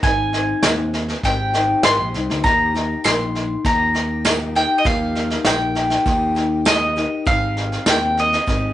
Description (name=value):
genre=indie folk with a building arrangement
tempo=100 BPM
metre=4/4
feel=straight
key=Eb major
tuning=A4 = 440 Hz
part: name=bowl-back mandolin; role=melody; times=0.0-8.7 s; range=Eb5 to C6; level=-19 LUFS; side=equal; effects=none
part: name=picked twelve-string acoustic guitar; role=accompaniment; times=0.0-8.7 s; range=Eb3 to G4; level=-26 LUFS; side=left 5 dB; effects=none
part: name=picked electric bass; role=bass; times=0.0-8.7 s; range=Ab1 to Eb2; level=-25 LUFS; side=right 1 dB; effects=none
part: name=vintage brush drum kit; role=drums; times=0.0-8.6 s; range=kick drum, snare drum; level=-20 LUFS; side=equal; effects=none
part: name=tambourine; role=percussion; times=0.6-8.0 s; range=none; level=-33 LUFS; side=right 6 dB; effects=none
room=moderate studio reverb, RT60 0.6 s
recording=rough rehearsal-room recording, warm saturation, nothing above 10.5 kHz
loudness=-16 LUFS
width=side -13 dB against mid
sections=0.0-8.7 A section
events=none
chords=0.0 Abmaj7; 2.4 Ebadd9; 7.3 Abmaj7